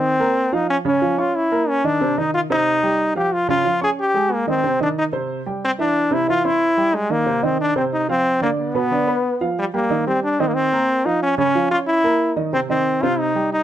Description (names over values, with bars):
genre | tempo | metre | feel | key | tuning
latin | 182 BPM | 4/4 | straight | C minor | A4 = 440 Hz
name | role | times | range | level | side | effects
bright trombone | melody | 0.0-13.6 s | G3 to Ab4 | -18 LUFS | left 1 dB | none
warm upright piano | accompaniment | 0.0-13.6 s | B2 to Db6 | -22 LUFS | right 3 dB | none
room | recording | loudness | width
light reverb | close, detailed microphones | -17 LUFS | side -11 dB against mid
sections
0.0-9.9 A section; 9.9-13.6 A section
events
none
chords
0.0 Cm7; 0.7 Db; 1.3 Eb5; 2.0 Cmadd11; 3.3 Dbadd9; 4.6 Cm; 7.3 F5; 8.6 G7; 9.9 Cm7; 11.2 Db; 11.9 Eb5; 12.5 Cm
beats
0.03 0.36 | 0.69 1.02 1.34 1.68 | 2.00 2.33 2.66 2.99 | 3.32 3.65 3.98 4.31 | 4.64 4.96 5.29 5.62 | 5.95 6.28 6.61 6.94 | 7.27 7.59 7.92 8.25 | 8.58 8.91 9.24 9.57 | 9.90 10.23 10.56 10.89 | 11.22 11.54 11.87 12.20 | 12.53 12.86 13.19 13.52